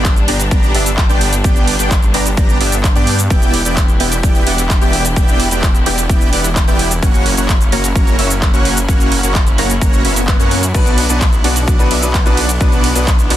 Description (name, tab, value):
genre	EDM, festival progressive house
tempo	129 BPM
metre	4/4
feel	straight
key	B harmonic minor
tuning	A4 = 440 Hz
part	rich studio string section	sustained chords	0.0-13.4 s	E3 to G4	-23 LUFS	equal	sidechain pumping
part	dense compressed supersaw	riff	0.0-13.4 s	A#3 to A#5	-18 LUFS	right 1 dB	sidechain pumping, digital delay
part	detuned saw bass	bass	0.0-13.4 s	E1 to G2	-19 LUFS	equal	sidechain pumping
part	electronic kick drum	drums	0.0-13.2 s	none	-13 LUFS	equal	overdrive, small room ambience
part	pop drum kit	drums	0.0-13.4 s	crash cymbal, handclaps, hi-hat, ride cymbal, shaker	-20 LUFS	right 1 dB	small room ambience
part	swell	sound effects	10.0-10.7 s	none	-25 LUFS	left 5 dB	none
part	bright grand piano	accompaniment	10.7-13.4 s	B2 to B4	-21 LUFS	left 3 dB	sidechain pumping, digital delay
room	little or no reverb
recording	dense, heavily limited modern master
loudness	-11 LUFS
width	side -13 dB against mid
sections	0.0-13.4 A section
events	swell 10.0-10.7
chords	0.0 G; 3.3 Em7; 7.0 F#; 10.7 Bm